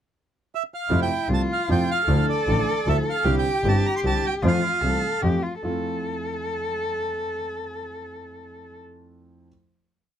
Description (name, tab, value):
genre	tango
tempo	152 BPM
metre	3/4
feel	rubato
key	F major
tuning	A4 = 440 Hz
part	bandoneon	melody	0.6-5.2 s	D5 to C6	-26 LUFS	right 5 dB	none
part	warm cello	second line	0.9-8.8 s	E4 to A4	-27 LUFS	left 2 dB	none
part	warm concert grand piano	accompaniment	0.9-9.5 s	G1 to F4	-28 LUFS	right 1 dB	none
part	bright double bass	bass	0.9-5.8 s	G1 to F2	-24 LUFS	equal	none
room	little or no reverb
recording	close, detailed microphones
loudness	-21 LUFS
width	side -9 dB against mid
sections	0.0-0.9 pickup bar; 0.9-5.6 A section; 5.6-8.0 final chord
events	none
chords	0.0 N.C.; 0.9 Fmaj7; 2.1 Dmadd9; 3.3 Cadd9; 4.4 Fmaj7